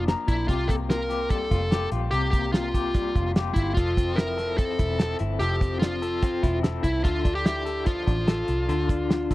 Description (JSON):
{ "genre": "jangly indie pop", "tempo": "146 BPM", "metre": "4/4", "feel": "straight", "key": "F major", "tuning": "A4 = 440 Hz", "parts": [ { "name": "dark smooth lead guitar", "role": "melody", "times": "0.0-9.3 s", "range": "E4 to Bb4", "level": "-28 LUFS", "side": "equal", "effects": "overdrive" }, { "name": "electric guitar through a small old amp", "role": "arpeggios", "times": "0.0-9.3 s", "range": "Bb2 to Bb4", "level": "-30 LUFS", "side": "left 6 dB", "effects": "tremolo" }, { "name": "vintage muted picked electric bass", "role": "bass", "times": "0.0-9.3 s", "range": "E1 to D2", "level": "-29 LUFS", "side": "equal", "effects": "none" }, { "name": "cloth-damped thuddy drum kit", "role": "drums", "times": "0.1-9.3 s", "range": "hi-hat, kick drum, snare drum", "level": "-24 LUFS", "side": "equal", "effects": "none" } ], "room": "little or no reverb", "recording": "dry, close 1970s-style studio recording", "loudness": "-22 LUFS", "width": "side -17 dB against mid", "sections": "0.0-9.3 A section", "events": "none", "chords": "0.5 C7sus4; 3.8 Fmaj7; 7.0 Dmadd9" }